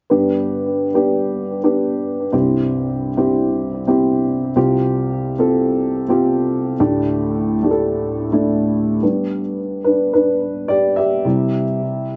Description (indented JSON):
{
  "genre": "pop",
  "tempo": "108 BPM",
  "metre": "4/4",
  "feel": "straight",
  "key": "G mixolydian",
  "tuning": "A4 = 439 Hz",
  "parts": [
    { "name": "dark upright piano", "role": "solo", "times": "0.1-12.2 s", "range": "C2 to E5", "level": "-18 LUFS", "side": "equal", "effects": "none" }
  ],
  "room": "light reverb",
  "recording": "nothing above 7.5 kHz",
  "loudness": "-18 LUFS",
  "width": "mono",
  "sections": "0.1-9.0 A section; 9.0-12.2 B section",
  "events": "upright piano solo 9.0-12.2",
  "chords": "0.1 G; 2.3 C; 4.6 Fsus2/C; 6.8 Dsus4; 9.0 G; 11.2 C",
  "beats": "| 0.10 0.66 1.22 1.77 | 2.33 2.89 3.44 4.00 | 4.56 5.12 5.67 6.23 | 6.79 7.35 7.90 8.46 | 9.02 9.58 10.13 10.69 | 11.25 11.81"
}